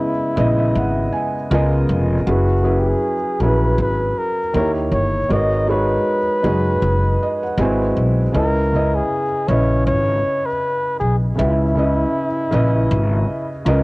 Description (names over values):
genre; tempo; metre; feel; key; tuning
lo-fi hip hop; 79 BPM; 4/4; swing 58% on 16ths; C# dorian; A4 = 437 Hz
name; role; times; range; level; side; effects
breathy flugelhorn; melody; 0.0-13.6 s; E4 to D#5; -22 LUFS; equal; cassette tape
felt-muted upright piano; accompaniment; 0.0-13.8 s; C#3 to G#5; -20 LUFS; right 1 dB; cassette tape
upright bass; bass; 0.4-13.8 s; E#1 to D#2; -18 LUFS; equal; none
room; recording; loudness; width
little or no reverb; home recording on cassette; -16 LUFS; side -23 dB against mid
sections
0.0-13.8 A section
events
none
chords
0.0 C#m9; 1.5 C#13; 2.3 F#9sus4; 4.5 D#7b9; 5.3 G#m11; 7.6 G#7alt; 8.3 C#m9